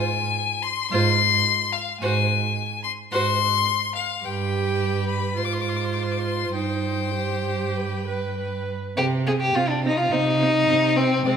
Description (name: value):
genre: quick classical-period movement for string quartet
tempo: 106 BPM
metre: 4/4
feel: rubato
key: C minor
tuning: A4 = 440 Hz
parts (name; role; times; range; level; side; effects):
- rich violin; melody; 0.0-11.3 s; C5 to D6; -25 LUFS; left 9 dB; none
- rich violin; second line; 0.0-11.4 s; C4 to C5; -24 LUFS; left 1 dB; none
- rich viola; accompaniment; 0.0-11.3 s; Ab3 to B4; -30 LUFS; right 4 dB; none
- rich cello; bass; 0.0-11.4 s; G2 to C3; -26 LUFS; right 4 dB; none
room: moderate scoring stage reverb, RT60 2.0 s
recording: minimal, uncompressed stereo recording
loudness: -20 LUFS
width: side -7 dB against mid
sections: 0.0-9.0 A section; 9.0-11.4 B section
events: none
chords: 0.0 Fm/Ab; 2.0 Ab7; 4.3 G; 5.4 Fm/Ab; 6.5 Cm/G; 7.8 G; 9.0 Cm